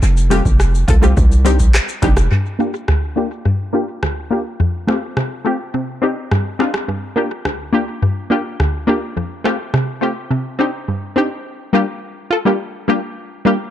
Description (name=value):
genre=dancehall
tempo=105 BPM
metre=4/4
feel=straight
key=G minor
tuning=A4 = 440 Hz
part: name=hard-hitting 808-style bass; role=bass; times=0.0-2.3 s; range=F1 to C2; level=-14 LUFS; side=equal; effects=none
part: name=booming analog drum machine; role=drums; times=0.0-9.9 s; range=handclaps, hi-hat, kick drum, rim click, shaker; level=-18 LUFS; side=equal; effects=overdrive, vintage 12-bit sampler grit, analog delay
part: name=punchy chord stab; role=accompaniment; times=0.3-13.6 s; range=D2 to A4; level=-17 LUFS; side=left 1 dB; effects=chorus, low-pass filter
part: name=bongos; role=percussion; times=1.0-2.3 s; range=none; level=-26 LUFS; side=right 6 dB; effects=none
room=light reverb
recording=echo-heavy mix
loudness=-15 LUFS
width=side -11 dB against mid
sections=0.0-2.3 A section; 2.3-11.5 B section; 11.5-13.7 A section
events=filter sweep on synth stab 2.3-11.5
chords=0.0 Fadd9; 1.2 Cmadd9; 2.3 Gm7; 4.6 Fadd9; 5.7 Cmadd9; 6.9 Gm7; 9.2 Fadd9; 10.3 Cmadd9; 11.5 Gm7